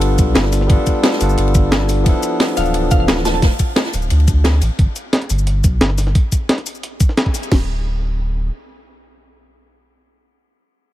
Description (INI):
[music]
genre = liquid drum and bass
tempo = 176 BPM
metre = 4/4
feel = straight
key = D dorian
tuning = A4 = 439 Hz
[part]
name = barky tine electric piano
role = accompaniment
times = 0.0-3.4 s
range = E3 to A4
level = -20 LUFS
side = equal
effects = overdrive, digital delay
[part]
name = warm sub bass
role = bass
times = 0.0-8.5 s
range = D1 to D2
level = -16 LUFS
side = equal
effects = tube saturation
[part]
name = breakbeat sampler-style drum kit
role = drums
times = 0.0-7.5 s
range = hi-hat, shaker, snare drum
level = -19 LUFS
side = equal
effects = none
[part]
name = natural country drum kit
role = drums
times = 0.0-4.7 s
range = hi-hat, ride cymbal, snare drum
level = -25 LUFS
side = left 1 dB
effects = high-pass filter on hats, high-pass filter on cymbals, high-pass filter on snare, high-pass filter on room
[part]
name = drum and bass drum kit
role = drums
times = 0.2-7.6 s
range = crash cymbal, kick drum, snare drum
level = -14 LUFS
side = equal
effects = none
[part]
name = glassy wavetable pluck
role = melody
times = 2.6-3.4 s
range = F5 to A5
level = -27 LUFS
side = equal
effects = chorus, vintage 12-bit sampler grit, tape echo
[sound]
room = small room ambience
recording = faint mains hum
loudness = -14 LUFS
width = side -14 dB against mid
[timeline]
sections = 0.0-7.5 A section; 7.5-10.2 B section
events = drop 0.0-7.5; band accent 7.2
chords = 0.0 G9; 2.1 Dm69; 4.8 N.C.